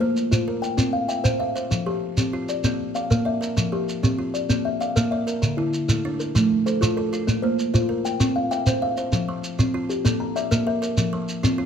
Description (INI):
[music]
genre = southern african traditional, mbira-style interlocking cycle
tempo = 130 BPM (dotted quarters)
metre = 12/8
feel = straight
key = F major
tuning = A4 = 439 Hz
[part]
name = buzzing kalimba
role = arpeggios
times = 0.0-11.7 s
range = D3 to E5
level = -26 LUFS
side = right 4 dB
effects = slapback echo
[part]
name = kalimba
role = arpeggios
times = 0.0-11.7 s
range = D3 to Bb5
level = -24 LUFS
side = left 4 dB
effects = none
[part]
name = shekere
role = percussion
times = 0.2-11.6 s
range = none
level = -24 LUFS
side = right 1 dB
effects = none
[sound]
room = light reverb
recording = close, detailed microphones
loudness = -20 LUFS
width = side -8 dB against mid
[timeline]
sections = 0.0-9.1 A section; 9.1-11.7 B section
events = none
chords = 0.0 Bb5; 0.8 C; 1.7 F5; 2.6 Bb; 3.6 F5; 4.5 Bb; 5.4 D5; 6.3 F; 7.3 Bb5; 8.2 C; 9.1 F5; 10.1 Bb; 11.0 F5